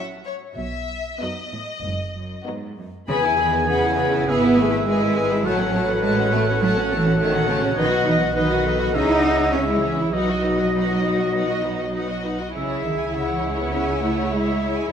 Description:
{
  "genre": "quick classical-period movement for symphony orchestra",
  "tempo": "101 BPM",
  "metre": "4/4",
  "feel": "rubato",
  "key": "unclear",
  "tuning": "A4 = 439 Hz",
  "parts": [
    { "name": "rich studio violin section", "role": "melody", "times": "0.0-14.9 s", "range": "C#5 to B5", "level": "-32 LUFS", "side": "left 4 dB", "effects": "none" },
    { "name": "warm studio violin section", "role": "second line", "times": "0.0-14.9 s", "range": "D#4 to G#5", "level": "-31 LUFS", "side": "left 3 dB", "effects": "none" },
    { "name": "rich studio viola section", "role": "accompaniment", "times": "0.0-14.9 s", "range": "F#3 to G#4", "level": "-28 LUFS", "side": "right 1 dB", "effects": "none" },
    { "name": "warm studio cello section", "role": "bass", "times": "0.6-14.9 s", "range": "F#2 to D#4", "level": "-24 LUFS", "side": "right 2 dB", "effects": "none" },
    { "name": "warm studio double bass section", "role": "bass", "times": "0.6-14.9 s", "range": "F#1 to E2", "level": "-28 LUFS", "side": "right 4 dB", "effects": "none" },
    { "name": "bright small flute group", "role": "second line", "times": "3.1-14.9 s", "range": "A4 to G#5", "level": "-27 LUFS", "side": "left 4 dB", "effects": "none" },
    { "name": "mellow clarinet", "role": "second line", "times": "3.1-14.9 s", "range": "F#4 to C#5", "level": "-30 LUFS", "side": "left 1 dB", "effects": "none" },
    { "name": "warm oboe", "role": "second line", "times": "3.1-14.9 s", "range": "D#5 to G#5", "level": "-29 LUFS", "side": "right 1 dB", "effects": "none" },
    { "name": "mellow French horn section", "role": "sustained chords", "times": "3.1-14.9 s", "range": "D#4 to B4", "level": "-27 LUFS", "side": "left 3 dB", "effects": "none" }
  ],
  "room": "wet scoring stage reverb, RT60 2.0 s",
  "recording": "none",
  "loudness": "-18 LUFS",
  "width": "side -8 dB against mid",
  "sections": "0.0-3.1 A section; 3.1-14.9 B section",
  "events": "none",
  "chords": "0.0 F#7(no3); 0.6 B; 3.1 E; 4.3 E/G#; 5.4 F#m/A; 7.8 B; 8.9 C#m; 10.1 B; 12.5 C#m",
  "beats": "| 0.58 1.21 1.84 2.46 | 3.08 3.68 4.28 4.87 | 5.45 6.04 6.62 7.19 | 7.78 8.36 8.94 9.53 | 10.13 10.74 11.35 11.95 | 12.55 13.14 13.73 14.32 | 14.90"
}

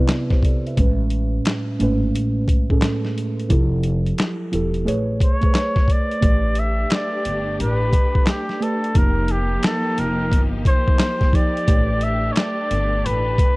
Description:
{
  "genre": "lo-fi hip hop",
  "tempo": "88 BPM",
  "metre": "4/4",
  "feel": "swing 65% on 16ths",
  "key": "A major",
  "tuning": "A4 = 444 Hz",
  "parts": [
    { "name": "muted felt-like synth keys", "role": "accompaniment", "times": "0.0-13.6 s", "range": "A2 to E5", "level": "-24 LUFS", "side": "right 2 dB", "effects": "chorus, cassette tape, low-pass filter" },
    { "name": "boom bap sampler-style drum kit", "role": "drums", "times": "0.1-13.6 s", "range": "handclaps, hi-hat, kick drum, snare drum", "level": "-18 LUFS", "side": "equal", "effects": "none" },
    { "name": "upright bass", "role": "bass", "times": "0.8-13.4 s", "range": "E1 to A1", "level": "-22 LUFS", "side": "equal", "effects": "none" },
    { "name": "breathy flugelhorn", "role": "melody", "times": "5.2-13.6 s", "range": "G4 to E5", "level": "-24 LUFS", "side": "equal", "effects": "low-pass filter" },
    { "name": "rich studio string section", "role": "sustained chords", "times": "6.2-13.6 s", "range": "F3 to G4", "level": "-30 LUFS", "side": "left 1 dB", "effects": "low-pass filter" }
  ],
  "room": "little or no reverb",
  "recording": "cassette tape",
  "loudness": "-17 LUFS",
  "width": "side -22 dB against mid",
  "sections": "0.0-6.2 A section; 6.2-13.6 B section",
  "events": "none",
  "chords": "0.0 Cmaj9; 0.8 Amaj9; 3.5 Fmaj9; 4.9 Amaj9; 6.2 A9sus4; 9.0 F9sus4; 11.7 A9sus4",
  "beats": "0.09 | 0.77 1.45 2.13 2.82 | 3.50 4.18 4.86 5.54 | 6.22 6.91 7.59 8.27 | 8.95 9.63 10.32 11.00 | 11.68 12.36 13.04"
}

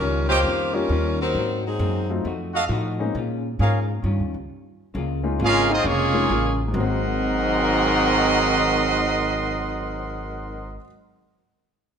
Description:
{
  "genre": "jazz",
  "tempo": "134 BPM",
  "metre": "4/4",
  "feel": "swing 65% on 8ths",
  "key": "Ab mixolydian",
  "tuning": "A4 = 440 Hz",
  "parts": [
    { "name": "warm saxophone section", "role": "melody", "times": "0.0-2.1 s", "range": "Gb3 to C5", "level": "-24 LUFS", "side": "left 2 dB", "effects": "none" },
    { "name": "vintage hollow-body jazz guitar", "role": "accompaniment", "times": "0.0-10.9 s", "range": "Ab2 to Gb4", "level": "-31 LUFS", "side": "left 5 dB", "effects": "none" },
    { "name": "upright bass", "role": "bass", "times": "0.0-10.8 s", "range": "F1 to Bb2", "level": "-26 LUFS", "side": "right 1 dB", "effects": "none" },
    { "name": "mellow trumpet section", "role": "stabs", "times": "0.3-3.8 s", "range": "Gb4 to G5", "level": "-27 LUFS", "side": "right 2 dB", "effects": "none" },
    { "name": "warm concert grand piano", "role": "accompaniment", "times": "0.7-10.9 s", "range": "Ab2 to Gb4", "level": "-31 LUFS", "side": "left 4 dB", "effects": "none" },
    { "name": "bright trumpet section", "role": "melody", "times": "5.4-10.8 s", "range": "Bb3 to C6", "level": "-22 LUFS", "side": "right 1 dB", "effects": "none" },
    { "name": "clear trombone section", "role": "second line", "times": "5.4-10.8 s", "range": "Ab2 to F4", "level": "-24 LUFS", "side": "right 2 dB", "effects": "none" }
  ],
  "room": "moderate large studio reverb, RT60 1.4 s",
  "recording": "minimal, uncompressed stereo recording",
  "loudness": "-20 LUFS",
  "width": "side -7 dB against mid",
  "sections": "0.0-4.9 A section; 4.9-6.7 B section; 6.7-10.3 C section",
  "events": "stop 4.5-4.9",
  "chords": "0.0 Eb9; 1.4 Ab9; 2.3 F7b9; 3.1 Bbm7; 4.0 Eb9; 4.9 Db6; 6.7 Ab9",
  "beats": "0.00 0.45 0.90 | 1.35 1.80 2.25 2.70 | 3.15 3.60 4.05 4.50 | 4.95 5.40 5.85 6.29 | 6.74 7.19 7.64 8.09 | 8.54 8.99 9.44 9.89"
}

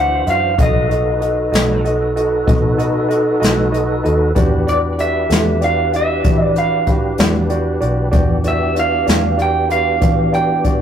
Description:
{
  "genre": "slow blues",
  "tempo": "64 BPM (dotted quarters)",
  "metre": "12/8",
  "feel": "straight",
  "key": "unclear",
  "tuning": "A4 = 437 Hz",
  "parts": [
    { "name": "electric guitar through a small old amp", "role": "melody", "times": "0.0-10.6 s", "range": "D5 to G5", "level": "-18 LUFS", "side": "right 2 dB", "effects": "tape echo" },
    { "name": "clear upright piano", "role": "accompaniment", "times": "0.0-10.8 s", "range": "F#4 to E5", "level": "-21 LUFS", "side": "right 2 dB", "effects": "none" },
    { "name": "tonewheel organ", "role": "sustained chords", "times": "0.0-10.8 s", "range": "E3 to C5", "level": "-21 LUFS", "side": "left 1 dB", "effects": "overdrive, chorus vibrato, slow rotary speaker" },
    { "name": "vintage muted fingered electric bass", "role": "bass", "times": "0.0-10.8 s", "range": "B1 to E3", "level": "-20 LUFS", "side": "equal", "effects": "none" },
    { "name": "jazz brush drum kit", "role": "drums", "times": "0.3-10.8 s", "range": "hi-hat, kick drum, snare drum", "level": "-17 LUFS", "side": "left 1 dB", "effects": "none" }
  ],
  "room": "moderate studio reverb, RT60 0.6 s",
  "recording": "rough rehearsal-room recording, tube saturation",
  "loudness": "-13 LUFS",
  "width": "side -9 dB against mid",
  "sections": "0.0-10.8 A section",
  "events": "none",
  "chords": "0.0 D9; 0.6 B7; 4.4 Em7",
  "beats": "| 0.58 1.53 2.47 3.41 | 4.36 5.30 6.24 7.18 | 8.13 9.07 10.01"
}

